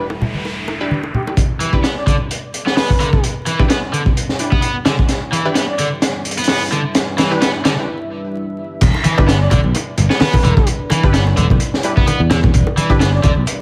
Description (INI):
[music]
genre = breakbeat, breaks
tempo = 129 BPM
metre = 4/4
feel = swing 55% on 16ths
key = E minor pentatonic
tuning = A4 = 437 Hz
[part]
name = breathy flute-like synth lead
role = melody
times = 0.0-13.3 s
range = G4 to D5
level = -27 LUFS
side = equal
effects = chorus, telephone sound, digital delay
[part]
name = deep dark ambient pad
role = sustained chords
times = 0.0-13.6 s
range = G3 to E5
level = -31 LUFS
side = equal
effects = chorus, built-in reverb, sidechain pumping
[part]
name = picked electric bass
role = bass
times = 0.0-1.4, 8.8-13.4 s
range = E1 to E2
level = -19 LUFS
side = equal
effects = none
[part]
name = noise sweep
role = sound effects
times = 0.0-1.4 s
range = none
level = -30 LUFS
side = equal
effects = none
[part]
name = bongos and congas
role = percussion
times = 0.1-1.4, 8.9-13.4 s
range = none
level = -23 LUFS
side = equal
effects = none
[part]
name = orchestra-hit-like synth stab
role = stabs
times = 0.8-13.0 s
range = D4 to B4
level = -26 LUFS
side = equal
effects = built-in reverb, digital delay
[part]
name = crunchy breakbeat drum kit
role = drums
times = 1.4-13.6 s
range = crash cymbal, hi-hat, kick drum, snare drum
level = -18 LUFS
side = equal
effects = none
[part]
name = cranked stack guitar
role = riff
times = 1.6-13.3 s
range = D3 to B3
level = -23 LUFS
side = equal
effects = overdrive, tube saturation, spring reverb, low-pass filter, digital delay
[sound]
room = light reverb, studio reverb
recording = vinyl crackle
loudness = -16 LUFS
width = mono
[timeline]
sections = 0.0-1.4 A section; 1.4-8.8 B section; 8.8-13.6 C section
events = noise sweep 0.0-1.4; build-up 1.4-8.8; filter sweep on ambient pad 1.4-8.8; filter sweep on soft synth lead 1.4-8.8; drum fill 5.1-7.9; break 7.9-8.8; drop 8.8-13.6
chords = 0.0 Em7